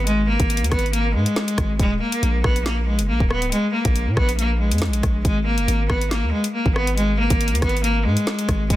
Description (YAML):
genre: hip hop, drill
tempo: 139 BPM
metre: 4/4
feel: half-time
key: unclear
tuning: A4 = 440 Hz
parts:
  - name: long sustained 808-style bass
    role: bass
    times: 0.0-8.8 s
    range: Db1 to Bb2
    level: -22 LUFS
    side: equal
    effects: none
  - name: bright cello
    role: melody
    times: 0.1-8.8 s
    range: Ab3 to Cb4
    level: -22 LUFS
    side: equal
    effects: low-pass filter, digital delay
  - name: drill drum kit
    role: drums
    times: 0.1-8.8 s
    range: hi-hat, kick drum, rim click, snare drum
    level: -22 LUFS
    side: equal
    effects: none
room: digital ambience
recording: dense, heavily limited modern master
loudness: -18 LUFS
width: side -15 dB against mid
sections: 0.0-8.8 A section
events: none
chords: 0.0 Ab5; 1.8 Eb5; 3.5 Bb5; 5.2 Ab5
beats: | 0.07 0.50 0.93 1.36 | 1.79 2.23 2.66 3.09 | 3.52 3.95 4.38 4.82 | 5.25 5.68 6.11 6.54 | 6.97 7.41 7.84 8.27 | 8.70